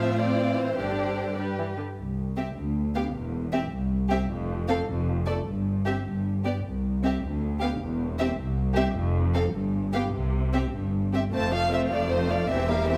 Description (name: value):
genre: quick classical-period movement for string orchestra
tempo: 103 BPM (dotted quarters)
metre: 6/8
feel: straight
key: C major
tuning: A4 = 440 Hz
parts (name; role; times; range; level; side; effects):
- warm chamber violin section; melody; 0.0-13.0 s; C5 to A5; -35 LUFS; equal; none
- dark chamber violin section; second line; 0.0-13.0 s; F4 to F5; -34 LUFS; equal; none
- warm studio viola section; accompaniment; 0.0-13.0 s; D3 to D4; -34 LUFS; equal; none
- warm chamber cello section; bass; 0.0-13.0 s; C2 to C3; -32 LUFS; equal; none
- warm studio double bass section; bass; 0.8-13.0 s; E1 to D2; -32 LUFS; equal; none
room: moderate recital hall reverb, RT60 1.7 s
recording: none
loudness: -27 LUFS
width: mono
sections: 0.0-2.0 A section; 2.0-11.3 B section; 11.3-13.0 A section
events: none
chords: 0.0 F/A; 0.8 Gsus4; 1.4 G; 2.0 N.C.; 2.6 G/D (rootless); 3.1 C/E; 3.7 N.C.; 4.3 F5; 4.9 Dm/F (rootless); 5.5 C5/G; 6.1 G; 6.6 N.C.; 7.2 G/D (rootless); 7.8 C/E; 8.4 N.C.; 8.9 F5; 9.5 G; 10.1 C5; 11.3 F